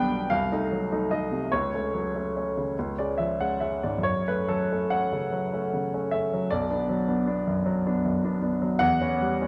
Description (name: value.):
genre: classical, romantic character piece for solo piano.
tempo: 45-53 BPM (dotted quarters).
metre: 6/8.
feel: rubato.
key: F# minor.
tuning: A4 = 440 Hz.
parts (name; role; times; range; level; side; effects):
clear baby grand piano; solo; 0.0-9.5 s; B1 to G5; -27 LUFS; equal; none.
room: wet recital hall reverb, RT60 1.6 s.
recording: dark, warm production.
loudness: -27 LUFS.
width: mono.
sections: 0.0-9.5 A section.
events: none.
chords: 0.3 Cdim7; 1.5 F#m/C#; 2.8 C#; 4.0 F#m; 6.5 Bm; 8.8 C#m7b5/E.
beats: 0.30 | 1.51 2.75 | 4.04 5.33 | 6.50 7.64 | 8.79.